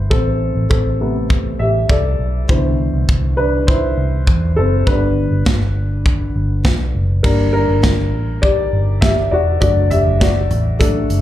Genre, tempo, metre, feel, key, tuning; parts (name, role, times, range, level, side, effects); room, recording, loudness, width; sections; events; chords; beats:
piano-driven pop; 101 BPM; 4/4; straight; A4 = 440 Hz
warm baby grand piano; accompaniment; 0.0-11.2 s; B2 to E5; -18 LUFS; left 1 dB; plate reverb, slapback echo
vintage muted fingered electric bass; bass; 0.0-11.2 s; E1 to E2; -17 LUFS; equal
modern studio drum kit; drums; 0.1-11.2 s; crash cymbal, hi-hat, kick drum, snare drum, toms; -16 LUFS; equal
light reverb; live gig heard through the venue's PA, club reverb; -13 LUFS; side -13 dB against mid
0.0-7.2 A section; 7.2-11.2 B section
grand piano solo 0.0-7.2, 7.2-11.2
0.0 Amadd9; 2.5 Cmaj7; 4.9 G; 7.2 Gm; 9.6 D/F#
| 0.11 0.71 1.30 1.90 | 2.49 3.08 3.68 4.27 | 4.87 5.46 6.06 6.65 | 7.24 7.84 8.43 9.03 | 9.62 10.21 10.81